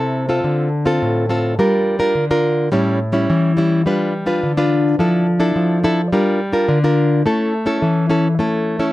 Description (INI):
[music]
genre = samba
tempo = 106 BPM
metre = 4/4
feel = straight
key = D minor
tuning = A4 = 441 Hz
[part]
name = nylon-string guitar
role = solo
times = 0.0-8.9 s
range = A2 to B4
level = -14 LUFS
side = equal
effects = none
[sound]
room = light reverb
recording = close, detailed microphones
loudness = -14 LUFS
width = side -16 dB against mid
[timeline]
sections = 0.5-8.9 A section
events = none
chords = 0.5 Dm7; 1.6 Gm7; 2.7 A7; 3.9 G7; 5.0 Dmadd9/F; 6.1 Gm7; 7.3 A